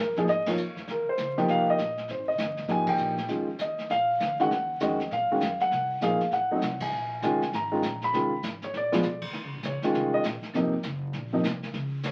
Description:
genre	jazz piano trio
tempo	199 BPM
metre	4/4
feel	swing 63% on 8ths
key	unclear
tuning	A4 = 440 Hz
part	warm grand piano	melody	0.0-12.1 s	C3 to Cb6	-28 LUFS	equal	none
part	upright bass	bass	0.0-12.1 s	F1 to Bb2	-42 LUFS	equal	none
part	jazz brush drum kit	drums	0.2-12.1 s	brushed snare drum, crash cymbal, hi-hat, kick drum, ride cymbal, snare drum	-38 LUFS	equal	none
room	wet studio ambience, RT60 0.5 s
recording	very old 78 rpm record, vinyl crackle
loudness	-28 LUFS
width	mono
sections	0.0-9.3 A section; 9.3-12.1 B section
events	band accent 0.4, 2.8, 6.8; drum fill 8.7-9.0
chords	0.0 Bbm7; 0.9 Eb13; 2.1 Absus2; 3.3 Eb9sus4; 3.9 Bb; 4.5 Ebm9; 5.7 Cm7b5; 6.3 Am6; 6.9 Bbm7; 8.1 Fm7b5; 8.7 Bb(b9); 9.3 Ebsus2; 10.5 Ab9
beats	0.27 0.57 | 0.87 1.18 1.48 1.78 | 2.09 2.39 2.69 2.99 | 3.30 3.60 3.90 4.20 | 4.51 4.81 5.11 5.41 | 5.71 6.02 6.32 6.62 | 6.92 7.22 7.53 7.83 | 8.13 8.43 8.73 9.03 | 9.34 9.64 9.94 10.24 | 10.54 10.84 11.14 11.44 | 11.74 12.04

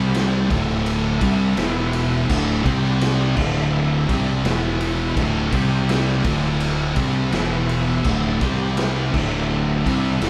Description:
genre	stoner and doom metal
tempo	83 BPM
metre	4/4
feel	straight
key	unclear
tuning	A4 = 440 Hz
part	overdriven tonewheel organ	sustained chords	0.0-10.3 s	C4 to E5	-34 LUFS	equal	slow rotary speaker, chorus vibrato
part	thick fuzz guitar	riff	0.0-10.3 s	D2 to C4	-28 LUFS	equal	none
part	thick fuzz guitar	riff	0.0-10.3 s	D2 to C4	-26 LUFS	equal	distortion
part	thick fuzz guitar	riff	0.0-10.3 s	D2 to C4	-29 LUFS	equal	distortion
part	growling fingered electric bass	bass	0.0-10.3 s	D1 to C2	-28 LUFS	equal	overdrive, tube saturation
part	raw garage drum kit	drums	0.1-10.3 s	crash cymbal, kick drum, ride cymbal, snare drum	-27 LUFS	equal	none
room	moderate studio reverb, RT60 0.8 s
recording	band playing live in one room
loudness	-20 LUFS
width	mono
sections	0.0-10.3 A section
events	none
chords	0.0 C5; 0.5 D5; 1.6 E5; 2.3 D5; 2.7 C5; 3.4 D5; 4.4 E5; 5.2 D5; 5.5 C5; 6.2 D5; 7.3 E5; 8.0 D5; 8.4 C5; 9.1 D5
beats	0.14 0.86 1.57 | 2.29 3.01 3.73 4.45 | 5.17 5.88 6.61 7.33 | 8.04 8.77 9.49 10.21

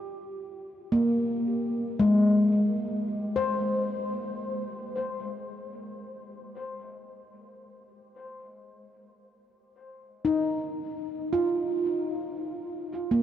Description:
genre	ambient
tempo	free time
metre	none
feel	none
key	unclear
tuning	A4 = 439 Hz
part	handpan	solo	0.0-13.2 s	Ab3 to C5	-26 LUFS	left 1 dB	diffuse ambient delay
room	wet huge ambient reverb, RT60 8.6 s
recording	worn, warbling old tape, cassette tape, warbly pitch drift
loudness	-25 LUFS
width	side -10 dB against mid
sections	0.0-13.2 A section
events	none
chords	0.0 Abmaj13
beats	free time

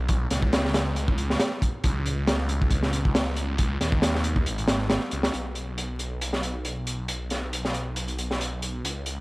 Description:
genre	breakbeat, breaks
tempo	137 BPM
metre	4/4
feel	swing 54% on 16ths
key	unclear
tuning	A4 = 440 Hz
part	phased detuned saw bass	bass	0.0-9.2 s	G#1 to D#2	-28 LUFS	equal	phaser
part	crunchy breakbeat drum kit	drums	0.1-9.2 s	hi-hat, kick drum, snare drum	-25 LUFS	equal	high-pass filter on kick, high-pass filter on hats, high-pass filter on snare, high-pass filter on room
room	little or no reverb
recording	dry, gritty hardware recording, vinyl crackle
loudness	-24 LUFS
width	side -24 dB against mid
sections	0.0-5.3 A section; 5.3-9.2 B section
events	none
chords	none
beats	| 0.09 0.53 0.96 1.40 | 1.84 2.28 2.71 3.15 | 3.59 4.03 4.47 4.91 | 5.34 5.78 6.22 6.66 | 7.09 7.53 7.97 8.41 | 8.85

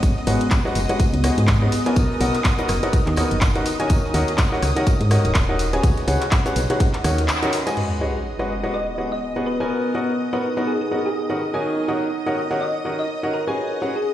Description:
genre	piano house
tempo	124 BPM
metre	4/4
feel	swing 58% on 16ths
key	G# minor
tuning	A4 = 440 Hz
part	string machine, violins	sustained chords	0.0-14.1 s	D#5 to D#6	-32 LUFS	equal	ensemble chorus, sidechain pumping
part	solid FM bass	bass	0.0-7.3 s	D#1 to G#2	-21 LUFS	equal	tube saturation, sidechain pumping
part	deep reggae drum kit	drums	0.0-7.8 s	hi-hat, snare drum, tambourine	-36 LUFS	left 1 dB	high-pass filter on hats, high-pass filter on snare, high-pass filter on perc, high-pass filter on room
part	electronic kick drum	drums	0.0-6.9 s	none	-19 LUFS	equal	none
part	house drum kit	drums	0.0-7.9 s	crash cymbal, handclaps, hi-hat, rim click	-27 LUFS	equal	none
part	deep dark ambient pad	texture	0.0-14.1 s	B3 to A#5	-28 LUFS	equal	chorus, built-in reverb, sidechain pumping
part	clear upright piano	riff	0.3-14.0 s	D#3 to G#5	-23 LUFS	equal	sidechain pumping, low-pass filter, digital delay
part	sub drop	sound effects	7.8-9.7 s	none	-30 LUFS	equal	none
part	thumb-piano-like synth pluck	melody	8.7-14.1 s	G#4 to D#5	-27 LUFS	left 1 dB	ensemble chorus, digital delay
room	moderate lush hall reverb, RT60 1.6 s, small room ambience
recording	played on a big sound system in a bare room, stone room reverb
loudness	-18 LUFS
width	side -12 dB against mid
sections	0.0-7.8 A section; 7.8-14.1 B section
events	band accent 7.3; impact 7.8-9.7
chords	0.0 G#m7; 1.7 Bmaj7; 3.7 D#m7; 5.8 C#7sus4; 6.8 D#m7; 7.8 G#m7; 9.5 Bmaj7; 11.4 D#m7; 13.6 G#m7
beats	| 0.03 0.51 1.00 1.48 | 1.96 2.45 2.93 3.42 | 3.90 4.38 4.87 5.35 | 5.83 6.32 6.80 7.29 | 7.77 8.25 8.74 9.22 | 9.71 10.19 10.67 11.16 | 11.64 12.12 12.61 13.09 | 13.58 14.06

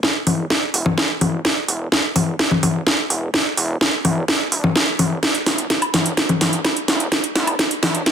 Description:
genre	melodic techno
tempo	127 BPM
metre	4/4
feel	straight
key	unclear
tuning	A4 = 441 Hz
part	electronic kick drum	drums	0.0-8.1 s	none	-29 LUFS	equal	none
part	house drum kit	drums	0.0-8.1 s	congas, hi-hat, snare drum, woodblock	-17 LUFS	equal	sidechain pumping on hats, sidechain pumping on perc
part	gritty driven synth bass	bass	0.3-8.0 s	D1 to E1	-24 LUFS	right 1 dB	tube saturation, sidechain pumping, high-pass filter
room	moderate digital room reverb, RT60 1.1 s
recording	dense, heavily limited modern master, high-pass filter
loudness	-16 LUFS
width	side -8 dB against mid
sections	0.0-8.1 A section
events	build-up 0.0-8.1; drum fill 0.0-8.1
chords	none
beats	0.03 0.50 0.98 | 1.45 1.92 2.39 2.87 | 3.34 3.81 4.28 4.76 | 5.23 5.70 6.17 6.65 | 7.12 7.59 8.06

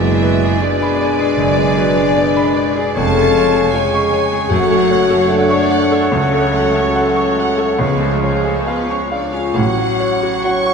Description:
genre	classical, romantic movement for piano and orchestra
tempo	64-79 BPM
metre	4/4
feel	rubato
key	F# minor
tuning	A4 = 439 Hz
part	bright grand piano	melody	0.0-10.7 s	A1 to C#6	-19 LUFS	left 2 dB	none
part	rich studio violin section	melody	0.0-10.7 s	C#5 to D5	-29 LUFS	left 2 dB	none
part	bright concert flute	second line	0.0-10.7 s	E#5 to G#5	-26 LUFS	equal	none
part	clear oboe	second line	0.0-10.7 s	C#5 to D5	-25 LUFS	right 4 dB	none
part	rich studio violin section	second line	0.0-10.7 s	G#4 to C#6	-24 LUFS	equal	none
part	warm clarinet	second line	0.0-10.7 s	A4 to C#5	-26 LUFS	right 2 dB	none
part	mellow bassoon	accompaniment	0.0-10.7 s	F#3 to A3	-26 LUFS	right 3 dB	none
part	rich studio viola section	accompaniment	0.0-10.7 s	E#3 to F#5	-25 LUFS	equal	none
part	mellow French horn section	sustained chords	0.0-10.7 s	G#3 to C#5	-18 LUFS	left 5 dB	none
part	warm trombone section	sustained chords	0.0-10.7 s	B2 to C#4	-25 LUFS	right 7 dB	none
part	rich studio cello section	bass	0.0-10.3 s	E#2 to C#3	-24 LUFS	right 4 dB	none
part	rich studio double bass section	bass	0.0-10.3 s	E#1 to C#2	-24 LUFS	right 6 dB	none
part	timpani	percussion	0.0-9.1 s	F#2 to C#3	-26 LUFS	left 2 dB	none
room	moderate scoring stage reverb, RT60 1.8 s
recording	nothing above 10.7 kHz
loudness	-12 LUFS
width	side -5 dB against mid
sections	0.0-10.7 A section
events	none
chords	0.0 G#m7b5/F#; 3.0 C#/E#; 4.5 F#m; 6.1 F#m/C#; 7.8 C#; 9.5 F#m/A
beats	0.60 1.38 2.15 | 2.96 3.74 4.50 5.31 | 6.13 6.97 7.81 8.68 | 9.55 10.45

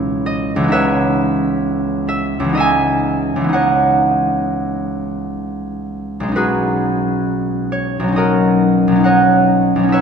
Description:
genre	classical, solo harp piece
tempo	62-69 BPM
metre	4/4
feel	rubato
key	unclear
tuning	A4 = 438 Hz
part	concert harp	solo	0.0-10.0 s	B1 to G#5	-14 LUFS	equal	none
room	wet church reverb, RT60 3.3 s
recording	minimal, uncompressed stereo recording, lossy compression artefacts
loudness	-14 LUFS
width	side -6 dB against mid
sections	0.0-10.0 A section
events	none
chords	0.0 C#m9; 6.4 B69; 8.2 D#m7/B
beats	0.71 1.61 | 2.55 3.51 4.46 5.41 | 6.35 7.27 8.17 9.05 | 9.93

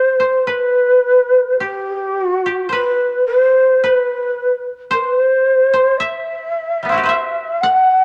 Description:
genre	japanese traditional, Japanese chamber music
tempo	54 BPM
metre	4/4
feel	rubato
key	E hirajoshi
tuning	A4 = 439 Hz
part	breathy mellow shakuhachi	melody	0.0-8.0 s	G4 to F#5	-16 LUFS	equal	none
part	koto	second line	0.0-8.0 s	G3 to F#5	-23 LUFS	equal	none
room	wet spring reverb, RT60 1.7 s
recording	none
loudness	-16 LUFS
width	mono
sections	0.0-8.0 A section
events	none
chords	none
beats	0.47 1.60 2.73 | 3.84 4.93 6.01 7.10

